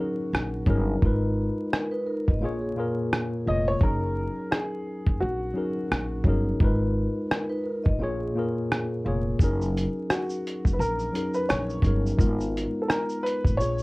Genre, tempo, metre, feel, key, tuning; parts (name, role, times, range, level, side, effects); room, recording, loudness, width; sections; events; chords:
lo-fi hip hop; 86 BPM; 4/4; swing 57% on 16ths; A4 = 440 Hz
warm upright piano; melody; 0.0-13.8 s; F#4 to D#5; -30 LUFS; equal; plate reverb
mellow tine electric piano; accompaniment; 0.0-13.8 s; A#2 to C#5; -28 LUFS; left 1 dB; medium stereo tremolo, cassette tape, plate reverb
upright bass; bass; 0.3-13.8 s; E#1 to A#1; -28 LUFS; equal
dusty soul sampler-style drum kit; drums; 0.3-13.8 s; hi-hat, kick drum, rim click, shaker; -24 LUFS; equal
vibraphone with soft mallets; second line; 1.7-9.2 s; D#4 to D#5; -34 LUFS; right 1 dB; tape echo, plate reverb
light reverb; worn, warbling old tape, cassette tape, vinyl crackle, warbly pitch drift; -24 LUFS; side -23 dB against mid
0.0-13.8 A section
break 0.0-9.4
0.0 F#6; 1.0 G#m69; 2.4 A#m7; 3.8 F#6; 6.6 G#m69; 8.0 A#m7; 9.4 F#6; 12.2 G#m69